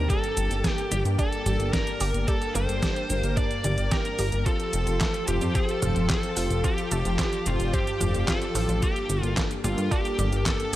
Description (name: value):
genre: synthwave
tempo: 110 BPM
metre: 4/4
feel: straight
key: G minor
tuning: A4 = 441 Hz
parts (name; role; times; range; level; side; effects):
- high-gain lead guitar; melody; 0.0-10.8 s; F4 to D5; -30 LUFS; equal; distortion, vintage 12-bit sampler grit, digital delay
- string machine, violins; second line; 0.0-10.8 s; F4 to D5; -37 LUFS; right 1 dB; ensemble chorus, cassette tape, tape echo
- lush unison pad; sustained chords; 0.0-10.8 s; F3 to D5; -35 LUFS; left 1 dB; chorus, sidechain pumping
- mellow synth brass; stabs; 0.0-10.8 s; G2 to D5; -34 LUFS; left 1 dB; chorus
- chorused synth bass; bass; 0.0-10.8 s; F1 to G2; -26 LUFS; equal; none
- analog pluck; arpeggios; 0.1-10.8 s; F3 to G4; -36 LUFS; right 3 dB; chorus, tape echo
- detuned 8-bit digital drum machine; drums; 0.1-10.8 s; cabasa, handclaps, hi-hat, snare drum, toms; -30 LUFS; right 1 dB; overdrive
- electronic kick drum; drums; 0.1-10.6 s; none; -27 LUFS; equal; overdrive
room: light reverb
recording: none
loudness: -23 LUFS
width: side -14 dB against mid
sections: 0.0-10.8 A section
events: none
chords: 0.1 Gmadd9; 4.5 Fadd9; 8.8 Gmadd9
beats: | 0.10 0.64 1.19 1.73 | 2.28 2.83 3.37 3.92 | 4.46 5.01 5.55 6.10 | 6.64 7.19 7.73 8.28 | 8.82 9.37 9.92 10.46